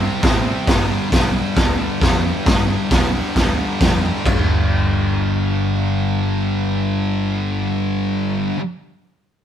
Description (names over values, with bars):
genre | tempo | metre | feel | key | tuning
garage rock duo or trio | 134 BPM | 4/4 | straight | unclear | A4 = 438 Hz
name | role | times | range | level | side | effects
thick fuzz guitar | riff | 0.0-8.6 s | G2 to C4 | -20 LUFS | left 1 dB | distortion
picked electric bass | bass | 0.0-8.5 s | G1 to A2 | -23 LUFS | equal | none
raw garage drum kit | drums | 0.2-4.4 s | crash cymbal, hi-hat, kick drum, snare drum, toms | -18 LUFS | equal | none
room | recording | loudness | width
light reverb | band playing live in one room | -16 LUFS | side -9 dB against mid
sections
0.0-4.3 A section; 4.3-7.8 B section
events
none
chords
0.0 C5; 0.7 G; 4.3 G5